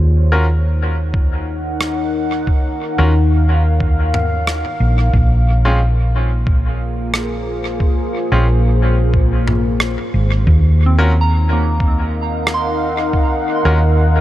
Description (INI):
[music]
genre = ambient dub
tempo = 90 BPM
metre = 4/4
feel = swing 55% on 16ths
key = Eb dorian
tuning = A4 = 440 Hz
[part]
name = deep dark ambient pad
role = sustained chords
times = 0.0-14.2 s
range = Bb3 to Gb5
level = -21 LUFS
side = left 1 dB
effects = chorus, built-in reverb
[part]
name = hollow-body short-scale fingered electric bass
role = bass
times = 0.0-14.2 s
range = Ab1 to Eb2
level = -14 LUFS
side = equal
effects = none
[part]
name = bright upright piano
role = stabs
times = 0.3-13.8 s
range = Ab3 to Bb4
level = -24 LUFS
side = left 1 dB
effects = dub echo
[part]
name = electronic kick drum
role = drums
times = 1.1-13.3 s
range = none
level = -16 LUFS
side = equal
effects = none
[part]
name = big rock drum kit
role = drums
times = 1.8-12.6 s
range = rim click, toms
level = -23 LUFS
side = equal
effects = dub echo
[part]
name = soft synth bell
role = arpeggios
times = 10.9-14.2 s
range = Bb3 to C6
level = -22 LUFS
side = right 3 dB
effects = chorus, dub echo
[sound]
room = small room ambience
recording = none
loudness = -13 LUFS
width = side -14 dB against mid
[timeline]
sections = 0.0-14.2 A section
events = none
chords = 0.0 Ebm7; 5.1 Bbm7; 10.5 Ebm